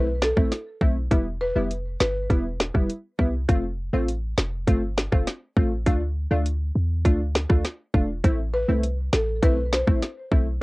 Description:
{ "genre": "dancehall", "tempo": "101 BPM", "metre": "4/4", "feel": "straight", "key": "A minor", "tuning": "A4 = 440 Hz", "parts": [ { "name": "buzzing marimba with medium hard mallets", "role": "melody", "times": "0.0-2.1, 8.5-9.8 s", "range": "A4 to C5", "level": "-27 LUFS", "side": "equal", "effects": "none" }, { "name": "wavetable chord stab", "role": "accompaniment", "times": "0.0-10.5 s", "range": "G3 to F4", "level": "-26 LUFS", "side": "equal", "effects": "cassette tape" }, { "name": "warm 808-style bass", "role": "bass", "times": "0.0-10.6 s", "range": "E1 to E2", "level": "-26 LUFS", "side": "equal", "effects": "none" }, { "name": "island pop drum kit", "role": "drums", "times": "0.2-10.5 s", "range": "hi-hat, kick drum, rim click, snare drum", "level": "-21 LUFS", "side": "equal", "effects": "overdrive, cassette tape" } ], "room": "little or no reverb", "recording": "home recording on cassette", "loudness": "-21 LUFS", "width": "side -23 dB against mid", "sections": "0.0-10.6 A section", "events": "none", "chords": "0.0 Am; 1.1 Em; 3.5 F; 5.9 Dm; 8.2 Am" }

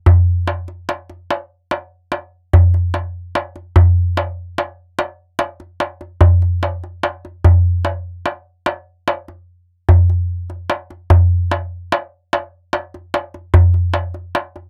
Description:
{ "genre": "greek folk", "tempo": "147 BPM (eighths)", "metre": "9/8", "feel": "straight", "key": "none", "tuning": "none", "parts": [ { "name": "darbuka", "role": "percussion", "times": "0.1-14.7 s", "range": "none", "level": "-16 LUFS", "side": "equal", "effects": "none" } ], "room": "light reverb", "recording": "dry, close 1970s-style studio recording", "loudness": "-18 LUFS", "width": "mono", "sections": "0.0-3.8 A section; 3.8-14.7 B section", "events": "none", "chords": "none" }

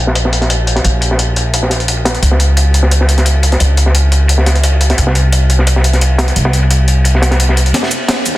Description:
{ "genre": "liquid drum and bass", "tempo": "174 BPM", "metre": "4/4", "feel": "straight", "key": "unclear", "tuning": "A4 = 440 Hz", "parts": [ { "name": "upright bass", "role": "bass", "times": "0.0-8.4 s", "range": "F1 to Eb2", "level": "-11 LUFS", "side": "equal", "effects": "high-pass filter" }, { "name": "crunchy breakbeat drum kit", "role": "drums", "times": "0.1-8.4 s", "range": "ride cymbal, snare drum", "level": "-17 LUFS", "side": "equal", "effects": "high-pass filter on cymbals, low-pass filter on cymbals, soft clipping on snare, high-pass filter on snare, low-pass filter on snare, high-pass filter on room, low-pass filter on room" }, { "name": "jungle sampler-style drum kit", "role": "drums", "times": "0.2-8.3 s", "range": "cabasa, hi-hat, snare drum", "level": "-17 LUFS", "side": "left 1 dB", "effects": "overdrive, low-pass filter on hats, low-pass filter on perc, low-pass filter on snare, low-pass filter on room" }, { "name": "electronic kick drum", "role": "drums", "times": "7.7-8.2 s", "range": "none", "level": "-25 LUFS", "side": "equal", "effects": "none" } ], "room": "little or no reverb", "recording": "dense, heavily limited modern master", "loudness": "-9 LUFS", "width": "side -16 dB against mid", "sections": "0.0-7.7 A section", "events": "drum fill 7.7-8.4", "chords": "none" }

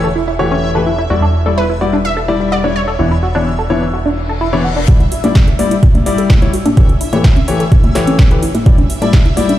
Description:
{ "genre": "progressive house", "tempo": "127 BPM", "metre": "4/4", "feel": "straight", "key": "E dorian", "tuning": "A4 = 442 Hz", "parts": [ { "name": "wide unison pluck", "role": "melody", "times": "0.0-4.4 s", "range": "B4 to E5", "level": "-23 LUFS", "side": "right 1 dB", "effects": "sidechain pumping, ping-pong delay" }, { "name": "tight sequenced synth", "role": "arpeggios", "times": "0.0-9.5 s", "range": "C#4 to A4", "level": "-19 LUFS", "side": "right 1 dB", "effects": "chorus, sidechain pumping, ping-pong delay" }, { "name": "warm grand piano", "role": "stabs", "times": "0.0-9.5 s", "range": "E3 to D5", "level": "-17 LUFS", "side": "left 4 dB", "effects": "vintage 12-bit sampler grit, sidechain pumping, ping-pong delay" }, { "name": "fat analog bass", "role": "bass", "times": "0.0-4.9 s", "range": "E1", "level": "-18 LUFS", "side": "right 1 dB", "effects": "tube saturation, sidechain pumping" }, { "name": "backwards swelling texture", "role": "texture", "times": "0.0-9.6 s", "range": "E5 to E6", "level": "-28 LUFS", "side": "right 2 dB", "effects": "built-in reverb, sidechain pumping" }, { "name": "reverse cymbal", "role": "sound effects", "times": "4.1-4.9 s", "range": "none", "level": "-29 LUFS", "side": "left 4 dB", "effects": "none" }, { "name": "big-room dance drum kit", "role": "drums", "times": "4.9-9.6 s", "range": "hi-hat, snare drum", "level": "-24 LUFS", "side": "right 1 dB", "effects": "high-pass filter on hats, studio ambience, high-pass filter on snare" }, { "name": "electronic kick drum", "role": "drums", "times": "4.9-9.2 s", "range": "none", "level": "-9 LUFS", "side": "equal", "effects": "studio ambience" }, { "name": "congas", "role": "percussion", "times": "5.2-9.5 s", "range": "none", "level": "-20 LUFS", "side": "equal", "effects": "overdrive, sidechain pumping on perc, studio ambience" } ], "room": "light reverb, digital ambience", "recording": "played on a big sound system in a bare room, large studio reverb", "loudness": "-10 LUFS", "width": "side -13 dB against mid", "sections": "0.0-4.9 A section; 4.9-9.6 B section", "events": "reverse cymbal 4.1-4.9; build-up 4.9-9.6; filter sweep on synth arpeggio sound 4.9-9.6", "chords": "0.0 A7/E; 1.1 Em7; 3.0 Bmadd9/E; 4.9 Em7; 6.8 A7/E; 8.7 Em7" }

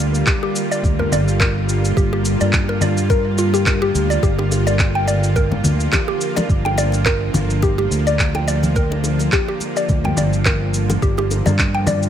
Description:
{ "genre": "organic downtempo", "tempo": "106 BPM", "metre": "4/4", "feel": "swing 56% on 16ths", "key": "G minor", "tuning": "A4 = 440 Hz", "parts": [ { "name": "bowed-like drone", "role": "sustained chords", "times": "0.0-12.1 s", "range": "D3 to F4", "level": "-23 LUFS", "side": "equal", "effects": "built-in reverb, sidechain pumping, shimmer reverb" }, { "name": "fretless electric bass", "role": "bass", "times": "0.0-12.1 s", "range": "G1 to G2", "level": "-19 LUFS", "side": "equal", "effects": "wide subtle chorus, sidechain pumping" }, { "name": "electronic cabasa, handclaps and congas", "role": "drums", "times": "0.1-12.1 s", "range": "none", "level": "-22 LUFS", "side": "left 1 dB", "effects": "studio reverb" }, { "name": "mallet-like synth pluck", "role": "arpeggios", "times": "0.3-12.0 s", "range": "F4 to G5", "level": "-22 LUFS", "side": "left 1 dB", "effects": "chorus, phaser, tape echo, shimmer reverb" }, { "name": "electronic kick drum", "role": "drums", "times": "0.3-11.7 s", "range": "none", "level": "-19 LUFS", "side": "equal", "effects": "studio reverb" }, { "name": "bongos and congas", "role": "percussion", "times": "4.4-12.0 s", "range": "none", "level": "-27 LUFS", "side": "left 1 dB", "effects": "none" } ], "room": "light reverb", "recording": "none", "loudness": "-15 LUFS", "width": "side -9 dB against mid", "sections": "0.0-12.1 A section", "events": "none", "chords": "0.0 Gm7" }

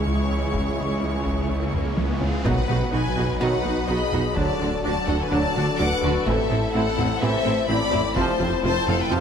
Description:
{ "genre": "cinematic, hybrid orchestral and electronic film score", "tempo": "126 BPM", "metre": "4/4", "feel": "straight", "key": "unclear", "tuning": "A4 = 440 Hz", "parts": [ { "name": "rich studio violin section", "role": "second line", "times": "0.0-9.2 s", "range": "F#4 to C#6", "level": "-29 LUFS", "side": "left 5 dB", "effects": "none" }, { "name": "rich symphonic viola section", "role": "accompaniment", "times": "0.0-9.2 s", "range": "G#3 to F#4", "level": "-30 LUFS", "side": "right 1 dB", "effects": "low-pass filter" }, { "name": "bright trombone section", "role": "sustained chords", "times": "0.0-9.2 s", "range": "C3 to G#3", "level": "-32 LUFS", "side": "right 3 dB", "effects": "low-pass filter" }, { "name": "warm analog pad", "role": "sustained chords", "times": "0.0-9.2 s", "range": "C#3 to C5", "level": "-30 LUFS", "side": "equal", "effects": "chorus, low-pass filter" }, { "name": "rich symphonic cello section", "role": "bass", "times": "0.0-9.2 s", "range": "C#2 to D3", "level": "-31 LUFS", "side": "right 2 dB", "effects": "none" }, { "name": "rich symphonic double bass section", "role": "bass", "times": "0.0-9.2 s", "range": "F1 to D2", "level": "-32 LUFS", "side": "right 2 dB", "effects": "none" }, { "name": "snarling distorted saw bass", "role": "bass", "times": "0.0-9.2 s", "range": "D1 to C#2", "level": "-33 LUFS", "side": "equal", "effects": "distortion" }, { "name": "riser and impact", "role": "sound effects", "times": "0.9-4.4 s", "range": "none", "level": "-33 LUFS", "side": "left 1 dB", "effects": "none" }, { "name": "analog pluck", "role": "arpeggios", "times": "0.1-9.2 s", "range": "C#3 to B4", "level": "-35 LUFS", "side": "left 3 dB", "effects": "none" }, { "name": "smooth gliding synth bass", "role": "riff", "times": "0.1-9.2 s", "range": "C#2 to B3", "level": "-29 LUFS", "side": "right 1 dB", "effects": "low-pass filter" }, { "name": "taiko ensemble", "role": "drums", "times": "0.5-9.1 s", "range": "none", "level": "-31 LUFS", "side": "equal", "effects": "none" }, { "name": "rich symphonic violin section", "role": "melody", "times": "2.2-9.2 s", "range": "D5 to D6", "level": "-29 LUFS", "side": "left 3 dB", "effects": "low-pass filter" }, { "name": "warm tuba", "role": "bass", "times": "2.5-9.2 s", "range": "F1 to D2", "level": "-31 LUFS", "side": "right 3 dB", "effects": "none" }, { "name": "mellow French horn section", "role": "sustained chords", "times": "3.4-9.2 s", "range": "E4 to C5", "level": "-30 LUFS", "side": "left 6 dB", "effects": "low-pass filter" } ], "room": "moderate scoring stage reverb, RT60 1.6 s", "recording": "none", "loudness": "-20 LUFS", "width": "side -7 dB against mid", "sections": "0.0-2.5 A section; 2.5-9.2 B section", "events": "riser 0.9-2.5; drum fill 1.7-2.5; impact 2.5-4.4", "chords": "0.0 C#m; 2.5 B; 4.4 D; 6.3 Am; 8.2 F" }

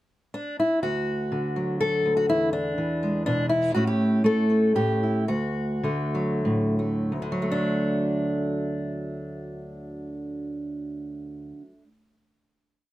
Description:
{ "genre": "folk, solo fingerstyle acoustic guitar", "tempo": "86-124 BPM", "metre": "3/4", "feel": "straight", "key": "D major", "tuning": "A4 = 439 Hz", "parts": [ { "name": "fingerpicked steel-string acoustic guitar", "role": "solo", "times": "0.3-11.9 s", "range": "D2 to A4", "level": "-23 LUFS", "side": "equal", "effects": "none" } ], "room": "light reverb", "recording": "close, detailed microphones", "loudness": "-23 LUFS", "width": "side -15 dB against mid", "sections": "0.0-0.8 pickup bar; 0.8-7.1 A section; 7.1-11.3 final chord", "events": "slowing down 3.8-7.1", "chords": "0.0 N.C.; 0.8 D; 2.3 E7; 3.8 A7; 5.3 D" }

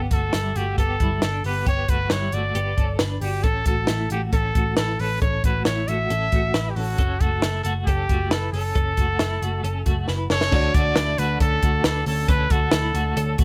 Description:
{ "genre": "jangly indie pop", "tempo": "136 BPM", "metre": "4/4", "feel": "straight", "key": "D major", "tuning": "A4 = 439 Hz", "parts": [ { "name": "twelve-string electric guitar", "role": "arpeggios", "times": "0.0-13.4 s", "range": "G3 to D5", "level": "-32 LUFS", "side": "equal", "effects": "tremolo" }, { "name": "vintage muted picked electric bass", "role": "bass", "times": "0.0-13.4 s", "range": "F#1 to D2", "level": "-28 LUFS", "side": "equal", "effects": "none" }, { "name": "bright trumpet", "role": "melody", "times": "0.1-13.4 s", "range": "F#4 to E5", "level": "-28 LUFS", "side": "equal", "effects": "analog delay" }, { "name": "compact cocktail drum kit", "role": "drums", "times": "0.1-13.4 s", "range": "crash cymbal, hi-hat, kick drum, snare drum", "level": "-25 LUFS", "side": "equal", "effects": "none" }, { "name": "warm upright piano", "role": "accompaniment", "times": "10.5-13.4 s", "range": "D4 to D5", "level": "-34 LUFS", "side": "equal", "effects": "none" } ], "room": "studio reverb", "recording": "none", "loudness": "-22 LUFS", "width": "mono", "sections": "0.0-10.5 A section; 10.5-13.4 B section", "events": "drum fill 10.1-10.5", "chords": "0.0 G6; 3.4 Aadd9; 7.0 F#m7; 10.5 Dmaj7" }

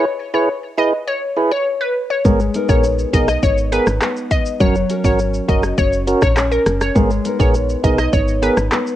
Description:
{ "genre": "dancehall", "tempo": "102 BPM", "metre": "4/4", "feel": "straight", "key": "G# minor", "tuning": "A4 = 440 Hz", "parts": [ { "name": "tonewheel organ", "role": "accompaniment", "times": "0.0-8.6 s", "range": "B3 to B4", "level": "-20 LUFS", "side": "right 2 dB", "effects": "stopped rotary speaker, cassette tape" }, { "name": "glassy wavetable pluck", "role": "melody", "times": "0.3-8.5 s", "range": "A#4 to D#5", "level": "-20 LUFS", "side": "left 1 dB", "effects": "chorus, cassette tape" }, { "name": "nylon-string guitar", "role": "arpeggios", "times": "2.3-9.0 s", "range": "F#3 to A#4", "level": "-22 LUFS", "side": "left 1 dB", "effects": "cassette tape" }, { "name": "woody FM bass", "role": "bass", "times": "2.3-8.7 s", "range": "F#1 to B1", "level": "-20 LUFS", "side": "equal", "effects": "none" }, { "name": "pop drum kit", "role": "drums", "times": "2.3-9.0 s", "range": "handclaps, hi-hat, kick drum, rim click, shaker", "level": "-18 LUFS", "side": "equal", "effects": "cassette tape" } ], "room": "digital ambience", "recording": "home recording on cassette", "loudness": "-14 LUFS", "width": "side -13 dB against mid", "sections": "0.0-9.0 A section", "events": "none", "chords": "0.0 E; 2.3 G#madd9; 4.6 F#; 7.0 G#madd9" }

